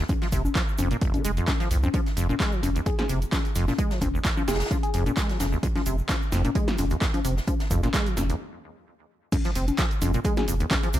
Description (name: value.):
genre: acid house.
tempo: 130 BPM.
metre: 4/4.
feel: swing 54% on 16ths.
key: F minor.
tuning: A4 = 440 Hz.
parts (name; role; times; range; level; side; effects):
acid bass, saw; riff; 0.0-11.0 s; F1 to Ab3; -29 LUFS; equal; analog chorus, sidechain pumping.
electronic kick drum; drums; 0.1-10.8 s; none; -27 LUFS; equal; overdrive.
punchy analog drum machine; drums; 0.1-11.0 s; congas, crash cymbal, handclaps, hi-hat, snare drum; -30 LUFS; left 2 dB; overdrive.
street-band drum kit; drums; 0.1-11.0 s; hi-hat, snare drum; -39 LUFS; left 2 dB; high-pass filter on hats, high-pass filter on snare, high-pass filter on room.
egg shaker; percussion; 0.1-11.0 s; none; -41 LUFS; right 3 dB; none.
saturated sub bass; bass; 0.3-11.0 s; F1 to C2; -27 LUFS; equal; tube saturation, sidechain pumping.
soft struck synth lead; melody; 2.9-5.0, 10.2-10.4 s; Ab4; -34 LUFS; left 1 dB; chorus, ping-pong delay.
room: small room ambience.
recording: none.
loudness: -23 LUFS.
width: side -13 dB against mid.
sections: 0.0-9.3 A section; 9.3-11.0 B section.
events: break 8.4-9.3; drop 9.3-11.0.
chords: 0.0 F5.